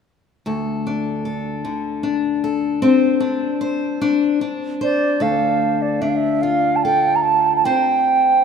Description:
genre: celtic folk, Celtic slow air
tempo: 50 BPM (dotted quarters)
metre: 6/8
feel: rubato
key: D minor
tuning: A4 = 439 Hz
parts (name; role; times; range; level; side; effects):
- picked steel-string acoustic guitar; accompaniment; 0.5-8.4 s; D2 to C5; -19 LUFS; left 4 dB; none
- wooden flute; melody; 4.8-8.4 s; D5 to Bb5; -16 LUFS; right 5 dB; none
room: moderate cathedral reverb, RT60 5.8 s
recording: minimal, uncompressed stereo recording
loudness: -16 LUFS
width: side -6 dB against mid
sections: 0.5-5.2 A section; 5.2-8.4 B section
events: none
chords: 0.5 D5; 2.8 Csus2; 5.2 Dm; 7.6 Csus2

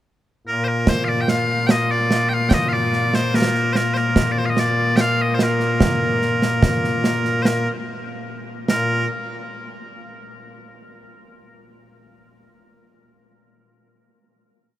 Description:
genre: scottish traditional, Scottish pipe music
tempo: 73 BPM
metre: 2/4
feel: straight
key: Bb major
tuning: A4 = 442 Hz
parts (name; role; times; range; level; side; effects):
- loud bright bagpipes; melody; 0.5-9.1 s; Bb2 to G5; -19 LUFS; left 1 dB; tape echo
- concert snare drum and concert bass drum; drums; 0.9-9.1 s; none; -21 LUFS; right 2 dB; none
room: moderate huge ambient reverb, RT60 9.1 s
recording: heard from further back in the room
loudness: -17 LUFS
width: side -13 dB against mid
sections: 0.0-0.9 pickup bar; 0.9-7.4 A section; 7.4-9.1 final note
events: none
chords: none

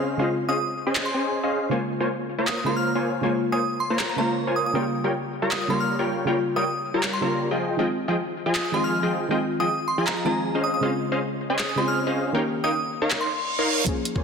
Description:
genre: future bass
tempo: 158 BPM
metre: 4/4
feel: swing 54% on 16ths, half-time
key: F minor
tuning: A4 = 441 Hz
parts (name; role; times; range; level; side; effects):
- soft round pluck; accompaniment; 0.0-14.2 s; Db3 to Ab4; -28 LUFS; equal; chorus, sidechain pumping, ping-pong delay
- supersaw stab; riff; 0.0-14.2 s; F3 to C6; -25 LUFS; left 1 dB; sidechain pumping, low-pass filter
- glassy synth bell; melody; 0.5-13.5 s; Bb5 to F6; -28 LUFS; right 1 dB; chorus, sidechain pumping, ping-pong delay
- dubstep drum kit; drums; 1.0-14.1 s; handclaps, hi-hat; -29 LUFS; equal; none
- reverse cymbal and riser; sound effects; 13.3-14.2 s; none; -27 LUFS; right 5 dB; none
- saturated sub bass; bass; 13.9-14.2 s; none; barely audible; none; none
- electronic kick drum; drums; 13.9-14.2 s; none; -26 LUFS; equal; none
room: wet lush hall reverb, RT60 2.0 s, digital ambience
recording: dense, heavily limited modern master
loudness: -22 LUFS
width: side -6 dB against mid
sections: 0.0-13.9 A section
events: reverse cymbal 13.3-13.9; riser 13.9-14.2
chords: 0.0 Dbmaj7; 1.7 Bbm7; 4.8 Gm7b5; 7.6 Fm7; 10.6 Dbmaj7; 12.3 Eb7

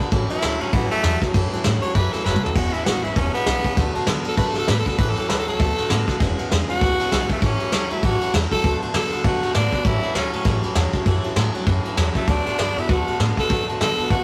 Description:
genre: rockabilly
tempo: 198 BPM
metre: 4/4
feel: swing 59% on 8ths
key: A major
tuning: A4 = 438 Hz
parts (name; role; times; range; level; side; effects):
- dark upright piano; accompaniment; 0.0-14.2 s; B4 to B5; -41 LUFS; equal; none
- picked steel-string acoustic guitar; accompaniment; 0.0-14.2 s; A2 to A4; -32 LUFS; equal; none
- twangy electric guitar; riff; 0.0-14.2 s; E2 to B3; -31 LUFS; equal; none
- upright bass; bass; 0.0-14.2 s; E1 to D3; -27 LUFS; equal; none
- soft brush drum kit; drums; 0.0-14.2 s; crash cymbal, kick drum, ride cymbal, snare drum, toms; -25 LUFS; equal; none
- growling tenor saxophone; melody; 0.3-14.2 s; A3 to C#5; -27 LUFS; equal; none
room: moderate stone room reverb, RT60 1.3 s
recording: rough rehearsal-room recording, warm saturation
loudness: -21 LUFS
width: mono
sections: 0.0-7.4 A section; 7.4-14.2 B section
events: tenor saxophone solo 0.0-7.4; drum fill 2.3-2.6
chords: 0.1 A6; 2.6 E6; 3.8 D6; 5.0 A6; 5.6 D6; 6.2 E6; 7.4 A6; 8.6 D6; 9.8 A6; 12.3 D6

